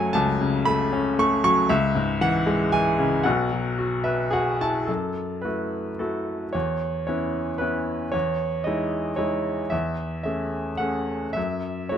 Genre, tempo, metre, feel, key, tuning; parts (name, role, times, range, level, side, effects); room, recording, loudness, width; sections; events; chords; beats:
classical, lyrical solo piano; 106-116 BPM; 3/4; rubato; A4 = 435 Hz
bright baby grand piano; solo; 0.0-12.0 s; F#1 to C#6; -22 LUFS; equal
light reverb; close, detailed microphones; -22 LUFS; side -9 dB against mid
0.0-4.9 A section; 4.9-12.0 B section
grand piano fill 3.8-4.9
0.0 F#m; 1.7 C#m; 3.3 Bsus4; 4.9 F#m7; 6.5 C#m7/E; 8.1 Emaj7; 9.7 Amaj7/E; 11.4 F#7(no3)
| 0.14 0.66 1.18 | 1.70 2.22 2.73 | 3.25 3.78 4.33 | 4.89 5.45 6.01 | 6.55 7.08 7.61 | 8.14 8.67 9.20 | 9.72 10.26 10.81 | 11.37 11.92